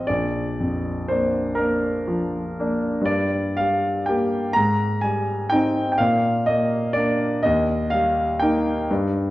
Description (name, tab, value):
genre	classical, romantic nocturne for solo piano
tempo	41 BPM (dotted quarters)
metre	6/8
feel	rubato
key	Bb major, Eb major from 3.1 s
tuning	A4 = 440 Hz
part	clear concert grand piano	solo	0.0-9.3 s	Bb1 to Bb5	-19 LUFS	equal	none
room	wet recital hall reverb, RT60 1.6 s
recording	worn, warbling old tape, cassette tape, warbly pitch drift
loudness	-19 LUFS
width	side -16 dB against mid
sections	0.0-9.3 A section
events	none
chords	0.1 Bb; 3.1 Gm; 4.5 Abmaj7; 6.0 Bb; 7.4 Eb